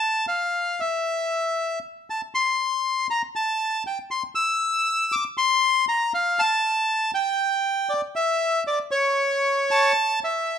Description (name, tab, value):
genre	tango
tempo	118 BPM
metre	4/4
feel	rubato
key	unclear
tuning	A4 = 440 Hz
part	bandoneon	solo	0.0-10.6 s	C#5 to E6	-21 LUFS	left 1 dB	none
room	light reverb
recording	minimal, uncompressed stereo recording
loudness	-21 LUFS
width	side -8 dB against mid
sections	0.0-10.2 A section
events	none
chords	none